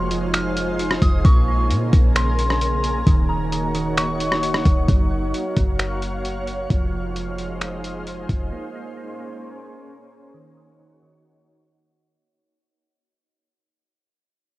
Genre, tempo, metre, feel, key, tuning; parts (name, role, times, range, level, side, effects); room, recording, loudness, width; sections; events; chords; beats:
hip hop, atmospheric cloud-rap; 132 BPM; 4/4; half-time; A4 = 445 Hz
soft synth bell; melody; 0.0-4.8 s; Bb5 to F6; -27 LUFS; left 1 dB; chorus, phaser, analog delay
shimmering ambient pad; sustained chords; 0.0-12.1 s; Db3 to F5; -28 LUFS; equal; chorus, built-in reverb, sidechain pumping, low-pass filter, cassette tape
soft electric-piano-like synth keys; arpeggios; 0.0-12.2 s; Eb3 to Bb3; -30 LUFS; right 5 dB; chorus, low-pass filter, cassette tape, analog delay
clean 808-style bass; bass; 0.0-8.5 s; Eb1 to Bb2; -23 LUFS; equal
wind-like tuned noise texture; texture; 0.0-12.1 s; Bb2 to Bb5; -38 LUFS; equal; built-in reverb, cassette tape
lo-fi sampler-style drum kit; drums; 0.1-8.4 s; finger snaps, hi-hat, kick drum, rim click; -20 LUFS; equal; overdrive, cassette tape
little or no reverb; home recording on cassette; -18 LUFS; side -18 dB against mid
0.0-4.9 A section; 4.9-12.2 B section
fade-out 4.9-12.2; filter sweep 4.9-12.2
0.0 Fm7; 1.2 Bbm9; 3.1 Ebm7; 4.9 Gbmaj7; 6.7 Fm7; 8.5 Bbm9; 10.3 Ebm7
0.34 0.79 | 1.25 1.70 2.16 2.61 | 3.07 3.52 3.98 4.43 | 4.88 5.34 5.79 6.25 | 6.70 7.16 7.61 8.07 | 8.52 8.98 9.43 9.88 | 10.34 10.79 11.25 11.70